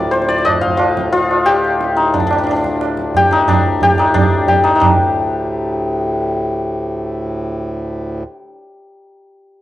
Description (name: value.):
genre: indian classical, Hindustani.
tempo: 181 BPM.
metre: 4/4.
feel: straight.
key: D raga bhairavi.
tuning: A4 = 441 Hz.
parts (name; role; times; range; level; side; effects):
santur; melody; 0.0-8.5 s; D4 to F5; -14 LUFS; left 2 dB; cassette tape, plate reverb.
hand-pumped harmonium; drone; 0.0-8.2 s; D2 to A2; -22 LUFS; right 1 dB; plate reverb.
tabla; percussion; 0.1-4.9 s; none; -18 LUFS; right 4 dB; none.
room: moderate studio reverb, RT60 0.6 s.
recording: home recording on cassette.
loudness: -13 LUFS.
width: side -14 dB against mid.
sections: 0.0-4.8 A section; 4.8-7.4 B section.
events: speeding up 0.0-7.4.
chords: none.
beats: 0.12 0.46 | 0.80 1.14 1.47 1.81 | 2.14 2.48 2.81 3.14 | 3.48 3.81 4.14 4.47 | 4.80 5.13 5.46 5.79 | 6.12 6.45 6.78 7.11.